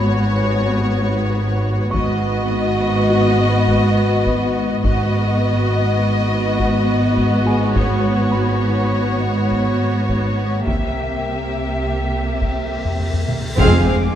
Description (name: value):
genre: cinematic, suspense film score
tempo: 103 BPM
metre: 5/4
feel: straight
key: unclear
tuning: A4 = 440 Hz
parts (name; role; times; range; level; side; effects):
- rich studio violin section; melody; 0.0-14.0 s; C#5 to F5; -24 LUFS; left 4 dB; none
- dark studio violin section; second line; 0.0-14.0 s; F#4 to Ab4; -24 LUFS; equal; none
- rich studio viola section; accompaniment; 0.0-14.0 s; Bb3 to C4; -24 LUFS; right 1 dB; none
- warm studio cello section; bass; 0.0-14.1 s; F2 to C3; -22 LUFS; equal; none
- warm studio double bass section; bass; 0.0-14.1 s; F1 to C2; -22 LUFS; right 1 dB; none
- felt-muted upright piano; texture; 0.0-13.6 s; F#4 to C#6; -31 LUFS; left 3 dB; none
- taiko ensemble; drums; 1.9-14.1 s; none; -23 LUFS; equal; none
- cymbal swell and impact; sound effects; 12.5-14.2 s; none; -28 LUFS; equal; none
- mellow French horn section; sustained chords; 13.6-14.2 s; Ab3 to C4; -21 LUFS; left 2 dB; none
- warm trombone section; sustained chords; 13.6-14.2 s; F2 to Ab3; -22 LUFS; right 2 dB; none
- timpani; percussion; 13.6-14.2 s; F2; -22 LUFS; equal; none
- warm studio violin section; texture; 13.6-14.2 s; Ab5 to D6; -30 LUFS; left 3 dB; none
room: moderate scoring stage reverb, RT60 1.8 s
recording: dark, warm production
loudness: -15 LUFS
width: side -10 dB against mid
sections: 0.0-13.6 A section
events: cymbal swell 12.5-13.6; drum fill 12.9-13.6; band accent 13.6-14.2; impact 13.6-14.2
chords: 0.0 Bsus2/G#; 10.7 C7; 13.6 Fm